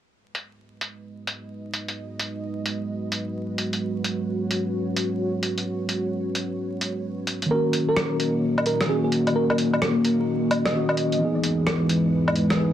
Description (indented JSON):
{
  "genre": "future garage",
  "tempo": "130 BPM",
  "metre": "4/4",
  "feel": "swing 65% on 16ths",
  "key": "G# minor",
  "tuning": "A4 = 440 Hz",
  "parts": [
    { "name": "dark analog pad", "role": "sustained chords", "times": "1.1-12.7 s", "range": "E3 to D#5", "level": "-26 LUFS", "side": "equal", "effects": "chorus, vintage 12-bit sampler grit" },
    { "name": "lo-fi sampler-style drum kit", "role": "drums", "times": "0.3-12.6 s", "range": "hi-hat, rim click, woodblock", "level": "-26 LUFS", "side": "equal", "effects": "low-pass filter on hats, vintage 12-bit sampler grit, soft clipping on snare, low-pass filter on snare, low-pass filter on perc, low-pass filter on room" },
    { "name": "bell-like FM electric piano", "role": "melody", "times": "7.5-11.3 s", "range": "G#4 to D#5", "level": "-27 LUFS", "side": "right 2 dB", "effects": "chorus, tremolo, tape echo" },
    { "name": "mellow tine electric piano", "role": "accompaniment", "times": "7.5-12.7 s", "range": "D#3 to G#4", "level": "-24 LUFS", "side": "left 1 dB", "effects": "medium stereo tremolo, tape echo" }
  ],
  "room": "light reverb, digital ambience",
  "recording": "dense, heavily limited modern master, vinyl crackle",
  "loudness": "-22 LUFS",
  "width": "side -11 dB against mid",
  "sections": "0.1-12.7 A section",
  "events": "filter sweep on drum 0.1-12.7",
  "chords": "0.1 G#m7; 7.5 D#m7; 11.2 Emaj7"
}